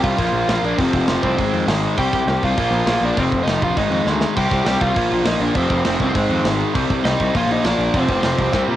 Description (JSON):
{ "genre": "punk rock", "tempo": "201 BPM", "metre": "4/4", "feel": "straight", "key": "unclear", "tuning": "A4 = 440 Hz", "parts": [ { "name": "overdriven semi-hollow guitar", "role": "melody", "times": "0.0-8.7 s", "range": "C4 to G5", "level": "-21 LUFS", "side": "equal", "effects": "cassette tape" }, { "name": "sludgy distorted guitar", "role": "riff", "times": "0.0-8.8 s", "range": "F2 to C4", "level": "-22 LUFS", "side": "left 6 dB", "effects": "overdrive, cassette tape" }, { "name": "tight distorted guitar", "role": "riff", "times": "0.0-8.8 s", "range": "F2 to C4", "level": "-24 LUFS", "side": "right 8 dB", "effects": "distortion, cassette tape" }, { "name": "fuzz picked electric bass", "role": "bass", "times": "0.0-8.8 s", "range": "F1 to Bb2", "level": "-23 LUFS", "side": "right 1 dB", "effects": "overdrive" }, { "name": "tight metal drum kit", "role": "drums", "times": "0.0-8.6 s", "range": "crash cymbal, kick drum, snare drum", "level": "-24 LUFS", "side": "equal", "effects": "cassette tape" } ], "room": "light reverb", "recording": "home recording on cassette", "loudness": "-16 LUFS", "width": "side -12 dB against mid", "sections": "0.0-8.8 A section", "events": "drum fill 4.1, 8.5", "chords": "0.2 Bb; 0.8 F5; 1.4 Ab; 2.0 C5; 2.6 Bb; 3.2 F5; 3.8 Ab5; 4.4 C5; 5.0 Bb; 5.6 F5; 6.2 Ab; 6.8 Cm; 7.3 Bb; 7.9 F5" }